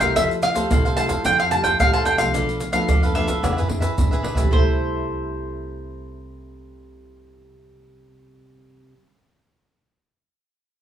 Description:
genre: samba and choro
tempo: 110 BPM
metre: 4/4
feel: straight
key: C major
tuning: A4 = 440 Hz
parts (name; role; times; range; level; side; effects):
- mandolin; melody; 0.0-8.9 s; C5 to A5; -22 LUFS; equal; none
- cavaquinho; accompaniment; 0.0-9.0 s; D4 to F5; -28 LUFS; right 2 dB; none
- nylon-string guitar; accompaniment; 0.0-9.0 s; G2 to G#4; -29 LUFS; left 1 dB; none
- upright bass; bass; 0.0-8.9 s; B1 to F2; -29 LUFS; equal; none
- maracas, surdo, pandeiro and tamborim; percussion; 0.0-4.7 s; none; -22 LUFS; right 1 dB; none
room: moderate studio reverb, RT60 0.8 s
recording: band playing live in one room, small room ambience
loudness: -18 LUFS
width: side -10 dB against mid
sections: 0.0-4.5 A section; 4.5-8.9 B section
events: drum fill 3.4-4.5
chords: 0.2 Fmaj9; 2.3 Bm7b5; 3.4 E7b13; 4.5 C6

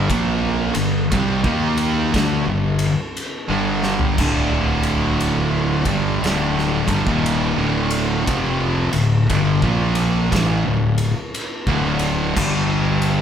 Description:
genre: stoner and doom metal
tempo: 59 BPM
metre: 4/4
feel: swing 63% on 8ths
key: D phrygian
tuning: A4 = 440 Hz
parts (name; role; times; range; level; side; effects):
- fuzz guitar; riff; 0.0-13.2 s; D2 to Eb4; -24 LUFS; right 3 dB; distortion
- thick fuzz guitar; riff; 0.0-13.2 s; D2 to Eb4; -22 LUFS; left 6 dB; distortion
- thick fuzz guitar; riff; 0.0-13.2 s; D2 to Eb4; -24 LUFS; right 7 dB; distortion
- fuzz fingered electric bass; bass; 0.0-13.2 s; D1 to Eb2; -25 LUFS; equal; overdrive
- oversized low-tuned drum kit; drums; 0.1-13.2 s; crash cymbal, kick drum, ride cymbal, snare drum, toms; -24 LUFS; equal; none
room: light reverb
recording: band playing live in one room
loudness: -17 LUFS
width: side -8 dB against mid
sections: 0.0-13.2 A section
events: drum fill 3.7-4.2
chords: 0.0 G5; 4.2 Dm; 12.4 G5

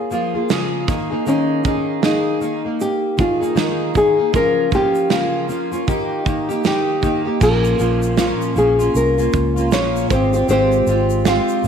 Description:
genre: acoustic pop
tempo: 78 BPM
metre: 4/4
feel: swing 60% on 16ths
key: unclear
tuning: A4 = 440 Hz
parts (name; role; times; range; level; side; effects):
- nylon-string guitar; melody; 0.0-11.7 s; Db4 to F5; -19 LUFS; left 2 dB; none
- fingerpicked plugged-in steel-string acoustic guitar; accompaniment; 0.0-11.7 s; Bb2 to Ab4; -20 LUFS; equal; double-tracked left and right
- loose indie drum kit; drums; 0.1-11.7 s; crash cymbal, kick drum, shaker, snare drum; -22 LUFS; right 4 dB; none
- vintage muted fingered electric bass; bass; 7.4-11.7 s; Ab1 to Db2; -20 LUFS; equal; none
- tube shaker; percussion; 7.4-11.6 s; none; -38 LUFS; left 16 dB; none
room: moderate echo chamber reverb, RT60 1.9 s, small room ambience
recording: 1960s-style stereo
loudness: -15 LUFS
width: side -7 dB against mid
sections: 0.0-7.4 A section; 7.4-11.7 B section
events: none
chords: 0.0 Db6; 0.9 Ebsus4; 4.3 Bbm/Db; 5.9 Eb; 7.4 Bbm; 10.1 Fmadd9/Ab

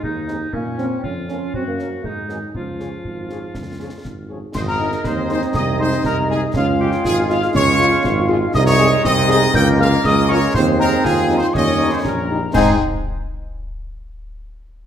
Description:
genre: military-style march for wind band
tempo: 120 BPM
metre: 2/4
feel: straight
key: Db major, Ab major from 4.5 s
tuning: A4 = 439 Hz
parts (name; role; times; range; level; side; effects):
- warm euphonium; second line; 0.0-12.3 s; Eb3 to G4; -24 LUFS; right 2 dB; none
- warm woodwind section; second line; 0.0-12.7 s; Db4 to F5; -27 LUFS; left 1 dB; none
- warm tuba; bass; 0.0-12.8 s; Ab1 to Bb2; -20 LUFS; right 2 dB; none
- concert bass drum, concert snare drum and clash cymbals; drums; 0.0-12.8 s; none; -27 LUFS; left 1 dB; none
- bright trumpet section; melody; 0.3-12.8 s; F4 to G5; -23 LUFS; left 1 dB; none
- warm French horn section; accompaniment; 0.3-12.7 s; F3 to Ab4; -25 LUFS; left 4 dB; none
- mellow wooden piccolo; second line; 4.5-12.8 s; F5 to G6; -23 LUFS; left 2 dB; none
- clear trombone section; sustained chords; 4.5-12.8 s; G3 to F4; -24 LUFS; right 1 dB; none
room: wet large studio reverb, RT60 1.3 s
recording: none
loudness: -15 LUFS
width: side -9 dB against mid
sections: 0.0-4.5 A section; 4.5-12.5 B section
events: none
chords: 0.0 Ab; 0.5 Bbm; 1.5 Gb; 2.0 Ab7; 2.5 Db; 4.5 Ab; 5.5 Ab/C; 6.5 Db; 8.5 Ab/C; 9.5 Bbm7/Db; 10.5 Ab/Eb; 11.5 Eb7; 12.5 Ab

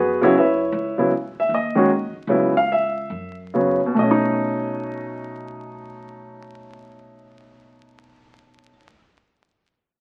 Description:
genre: jazz piano trio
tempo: 134-158 BPM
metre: 4/4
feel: swing 63% on 8ths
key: B mixolydian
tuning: A4 = 439 Hz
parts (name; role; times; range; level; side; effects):
- clear baby grand piano; melody; 0.0-8.9 s; B2 to E#5; -21 LUFS; equal; none
- upright bass; bass; 0.0-8.8 s; B1 to F#2; -36 LUFS; equal; none
room: wet studio reverb, RT60 0.7 s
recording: very old 78 rpm record, vinyl crackle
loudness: -20 LUFS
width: mono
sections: 0.0-4.0 A section; 4.0-7.6 B section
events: slowing down 0.7-4.0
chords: 0.0 F#9sus4; 0.7 C#m7; 1.5 N.C.; 2.3 C#m7; 3.1 F#sus4; 4.0 B9

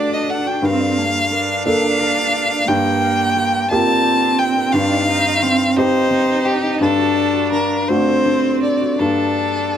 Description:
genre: neoclassical piano and strings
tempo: 52-59 BPM (dotted quarters)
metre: 6/8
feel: rubato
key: G minor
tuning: A4 = 441 Hz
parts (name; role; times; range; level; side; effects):
- rich violin; melody; 0.0-9.8 s; G4 to A5; -18 LUFS; left 2 dB; none
- rich cello; second line; 0.0-9.8 s; Bb3 to Eb4; -22 LUFS; right 6 dB; none
- dark upright piano; accompaniment; 0.0-9.8 s; G2 to A4; -20 LUFS; equal; none
- concert harp; arpeggios; 0.0-9.8 s; Bb3 to A5; -24 LUFS; left 5 dB; none
room: light reverb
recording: none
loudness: -14 LUFS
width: side -9 dB against mid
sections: 0.0-9.8 A section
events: none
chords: 0.0 D/G; 0.6 Bbmaj7/G; 2.7 Gm7; 4.7 Cmadd9/G; 6.8 D/G; 9.0 Bbmaj7/G

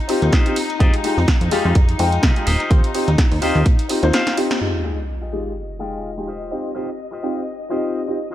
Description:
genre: filtered disco house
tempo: 126 BPM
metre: 4/4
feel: swing 56% on 16ths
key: F minor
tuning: A4 = 441 Hz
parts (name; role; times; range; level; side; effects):
- dark studio string section; sustained chords; 0.0-8.3 s; Eb4 to Eb5; -29 LUFS; left 3 dB; sidechain pumping, low-pass filter
- dark grand piano; accompaniment; 0.1-8.2 s; Ab3 to G5; -23 LUFS; left 2 dB; phaser, vintage 12-bit sampler grit, sidechain pumping, low-pass filter
- electric guitar with an envelope filter; riff; 0.1-8.3 s; F4 to F5; -28 LUFS; left 1 dB; sidechain pumping, low-pass filter
- punchy analog drum machine; drums; 0.1-4.6 s; hi-hat, snare drum; -24 LUFS; right 1 dB; sidechain pumping on hats
- plucky analog bass; bass; 0.2-4.1 s; Eb1 to F2; -19 LUFS; equal; tube saturation, sidechain pumping, low-pass filter
- maracas; percussion; 0.2-8.3 s; none; -43 LUFS; left 2 dB; none
- electronic kick drum; drums; 0.3-3.8 s; none; -15 LUFS; equal; none
- sub drop; sound effects; 4.6-6.5 s; none; -28 LUFS; equal; none
room: light reverb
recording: faint mains hum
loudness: -16 LUFS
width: side -13 dB against mid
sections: 0.0-4.6 A section; 4.6-8.3 B section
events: drum fill 4.3-4.6; band accent 4.5; impact 4.6-6.5; filter sweep 4.6-8.3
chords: 0.0 Eb69; 0.8 Fm9; 2.5 Eb69; 4.6 Fm9; 6.3 Eb69

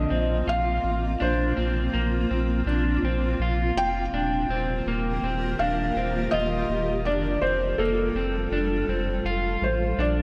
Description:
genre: dream pop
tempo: 82 BPM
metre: 4/4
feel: straight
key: Bb major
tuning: A4 = 440 Hz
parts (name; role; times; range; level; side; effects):
- felt-muted upright piano; melody; 0.0-10.2 s; A4 to G5; -30 LUFS; equal; delay
- granular cloud pad; sustained chords; 0.0-10.2 s; Eb3 to Bb4; -33 LUFS; equal; built-in reverb, subtle chorus
- electric guitar at the edge of break-up; arpeggios; 0.0-10.2 s; D3 to F4; -31 LUFS; equal; subtle chorus, delay
- warm sub bass; bass; 0.0-10.2 s; Eb1 to Bb1; -30 LUFS; equal; none
room: wet plate reverb, RT60 2.9 s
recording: dreamy mix soaked in reverb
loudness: -25 LUFS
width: mono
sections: 0.0-10.2 A section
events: none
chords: 0.0 Bbsus2; 4.1 Ebadd9; 7.1 Fadd9

